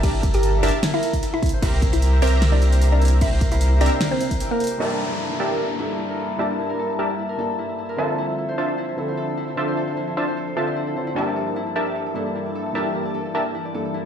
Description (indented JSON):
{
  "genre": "future bass",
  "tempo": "151 BPM",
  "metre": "4/4",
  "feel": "swing 53% on 16ths, half-time",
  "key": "G dorian",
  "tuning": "A4 = 440 Hz",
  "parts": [
    { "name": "mallet-like synth pluck", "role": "melody", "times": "0.0-4.7 s", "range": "Bb3 to G5", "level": "-26 LUFS", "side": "equal", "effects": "chorus, phaser, sidechain pumping, tape echo" },
    { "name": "ethereal airy pad", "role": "sustained chords", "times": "0.0-14.1 s", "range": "Bb2 to A5", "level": "-31 LUFS", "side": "left 2 dB", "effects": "ensemble chorus, built-in reverb, sidechain pumping" },
    { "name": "concert harp", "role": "arpeggios", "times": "0.0-14.1 s", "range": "E4 to D5", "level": "-30 LUFS", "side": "left 1 dB", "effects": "sidechain pumping, low-pass filter, tape echo" },
    { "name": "supersaw stab", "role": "riff", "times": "0.0-13.4 s", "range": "C4 to Bb5", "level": "-26 LUFS", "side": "equal", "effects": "sidechain pumping, low-pass filter, tape echo" },
    { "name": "saturated sub bass", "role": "bass", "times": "0.0-3.9 s", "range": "G1 to C2", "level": "-17 LUFS", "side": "equal", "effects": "tube saturation, sidechain pumping" },
    { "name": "electronic kick drum", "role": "drums", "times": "0.0-4.4 s", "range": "none", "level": "-22 LUFS", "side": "equal", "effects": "none" },
    { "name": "pop drum kit", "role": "drums", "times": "0.0-4.8 s", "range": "crash cymbal, hi-hat, snare drum", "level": "-29 LUFS", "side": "equal", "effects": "low-pass filter on hats, low-pass filter on cymbals, low-pass filter on snare, low-pass filter on room" },
    { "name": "felt-muted upright piano", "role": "accompaniment", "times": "4.8-14.1 s", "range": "G2 to A5", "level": "-28 LUFS", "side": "equal", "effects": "sidechain pumping, tape echo" },
    { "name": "downlifter", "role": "sound effects", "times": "4.8-8.0 s", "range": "none", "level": "-32 LUFS", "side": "left 1 dB", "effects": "none" }
  ],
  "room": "light reverb",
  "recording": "played on a big sound system in a bare room, stone room reverb",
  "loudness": "-19 LUFS",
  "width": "side -8 dB against mid",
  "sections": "0.0-4.8 A section; 4.8-14.1 B section",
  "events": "drop 0.0-4.8; kick drops out 4.4-4.8; filter sweep on harp 4.8-14.1",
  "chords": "0.0 Gm69; 1.4 C7; 4.8 Gm69; 8.0 Dm9; 11.2 Gm69"
}